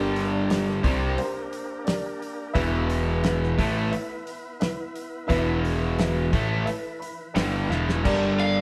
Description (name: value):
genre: classic rock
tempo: 87 BPM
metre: 4/4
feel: straight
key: unclear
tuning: A4 = 440 Hz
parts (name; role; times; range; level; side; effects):
- dark upright piano; accompaniment; 0.0-8.6 s; E4 to B5; -35 LUFS; equal; none
- tonewheel organ; sustained chords; 0.0-8.6 s; E3 to B4; -40 LUFS; equal; none
- cranked stack guitar; riff; 0.0-8.6 s; E2 to C4; -28 LUFS; equal; overdrive
- modern bright picked electric bass; bass; 0.0-8.6 s; E1 to C2; -30 LUFS; equal; none
- damped 70s drum kit; drums; 0.2-8.6 s; crash cymbal, hi-hat, kick drum, snare drum; -31 LUFS; equal; none
- lead guitar through a small cranked amp; melody; 8.4-8.6 s; F5; -28 LUFS; equal; overdrive
room: wet stone room reverb, RT60 1.3 s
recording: band playing live in one room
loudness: -25 LUFS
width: mono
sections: 0.0-8.1 A section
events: upright piano fill 6.7-8.1; drum fill 7.7-8.1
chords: 0.0 Gm; 2.6 E5; 8.1 Gm